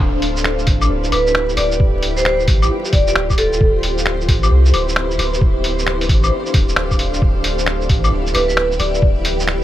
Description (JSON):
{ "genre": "future garage", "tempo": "133 BPM", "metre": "4/4", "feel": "swing 65% on 16ths", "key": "unclear", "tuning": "A4 = 438 Hz", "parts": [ { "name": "granular cloud pad", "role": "sustained chords", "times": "0.0-9.6 s", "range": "D4 to F5", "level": "-22 LUFS", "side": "left 1 dB", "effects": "built-in reverb, vintage 12-bit sampler grit, sidechain pumping" }, { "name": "soft dub sub bass", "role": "bass", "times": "0.0-9.6 s", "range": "D1 to C2", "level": "-19 LUFS", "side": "equal", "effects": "sidechain pumping" }, { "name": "electronic kick drum", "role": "drums", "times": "0.0-9.1 s", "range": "none", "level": "-16 LUFS", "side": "equal", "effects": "none" }, { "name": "wind-like tuned noise texture", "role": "texture", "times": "0.9-9.6 s", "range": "G4", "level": "-29 LUFS", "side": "right 3 dB", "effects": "built-in reverb" }, { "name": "lo-fi sampler-style drum kit", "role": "drums", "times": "0.2-9.6 s", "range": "claves, finger snaps, hi-hat, shaker", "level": "-20 LUFS", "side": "left 1 dB", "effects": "none" }, { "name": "vibraphone with medium hard mallets", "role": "melody", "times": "1.1-3.7, 8.3-9.0 s", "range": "A4 to D5", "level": "-20 LUFS", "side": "equal", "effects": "analog delay" } ], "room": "light reverb", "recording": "vinyl crackle", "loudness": "-14 LUFS", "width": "side -13 dB against mid", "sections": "0.0-9.6 A section", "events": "none", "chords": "0.0 Em/D; 1.8 G7sus4/D; 3.6 Cmaj7/D; 5.4 Dm7; 7.2 Em/D; 9.0 G7sus4/D" }